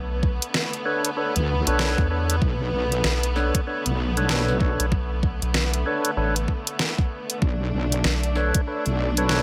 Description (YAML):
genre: glitch hop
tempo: 96 BPM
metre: 4/4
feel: swing 61% on 16ths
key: B minor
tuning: A4 = 440 Hz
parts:
  - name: clear symphonic string section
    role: sustained chords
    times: 0.0-9.4 s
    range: D3 to D4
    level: -32 LUFS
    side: equal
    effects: sidechain pumping
  - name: rubbery square bass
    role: bass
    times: 0.0-8.5 s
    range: A1 to E2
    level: -27 LUFS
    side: equal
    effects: tube saturation
  - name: electronic kick drum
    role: drums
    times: 0.2-8.6 s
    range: none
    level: -26 LUFS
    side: equal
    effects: overdrive
  - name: pop drum kit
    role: drums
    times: 0.4-9.4 s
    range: hi-hat, snare drum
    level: -27 LUFS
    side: equal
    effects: overdrive
  - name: tonewheel organ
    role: stabs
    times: 0.9-9.4 s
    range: D4 to C#5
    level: -30 LUFS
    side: equal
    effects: slow rotary speaker, vintage 12-bit sampler grit, sidechain pumping, dub echo
  - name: wobble bass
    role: bass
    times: 1.4-9.4 s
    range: B1 to D2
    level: -26 LUFS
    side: equal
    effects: chorus, tube saturation
room: light reverb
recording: none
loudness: -24 LUFS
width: mono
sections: 0.0-9.4 A section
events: none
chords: 0.0 Bm9